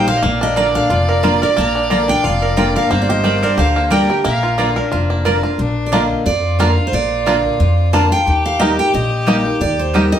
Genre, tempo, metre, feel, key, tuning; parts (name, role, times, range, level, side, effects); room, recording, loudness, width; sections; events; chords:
bluegrass; 179 BPM; 4/4; swing 55% on 8ths; Bb major; A4 = 440 Hz
picked steel-string acoustic guitar; melody; 0.0-10.2 s; C5 to Bb5; -19 LUFS; right 2 dB; plate reverb
clear fiddle; second line; 0.0-10.2 s; D4 to Eb5; -22 LUFS; left 2 dB
picked steel-string acoustic guitar; accompaniment; 0.0-10.2 s; F2 to G4; -19 LUFS; left 1 dB
bluegrass banjo; arpeggios; 0.0-10.0 s; Bb3 to Bb4; -20 LUFS; right 2 dB
upright bass; bass; 0.0-10.1 s; F1 to F2; -19 LUFS; left 1 dB
mandolin; stabs; 0.6-10.0 s; Bb3 to Bb5; -22 LUFS; right 5 dB
wet studio reverb, RT60 0.6 s; heard from further back in the room; -13 LUFS; side -9 dB against mid
0.0-5.6 A section; 5.6-10.2 A section
0.2 Bb; 2.9 Gm; 4.2 Bb; 8.3 Eb